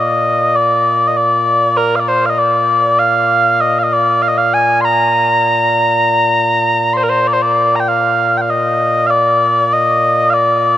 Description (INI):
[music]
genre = scottish traditional, Scottish pipe music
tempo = 98 BPM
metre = 4/4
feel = straight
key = Bb major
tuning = A4 = 438 Hz
[part]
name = mellow small bagpipes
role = solo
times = 0.0-10.8 s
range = Bb2 to C6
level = -11 LUFS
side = equal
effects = none
[sound]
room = moderate huge ambient reverb, RT60 3.9 s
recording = none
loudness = -11 LUFS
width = side -12 dB against mid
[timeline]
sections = 0.0-7.3 A section; 7.3-10.8 A section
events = none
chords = none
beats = 0.53 1.14 1.75 | 2.36 2.98 3.59 4.20 | 4.81 5.43 6.04 6.65 | 7.26 7.88 8.49 9.10 | 9.71 10.32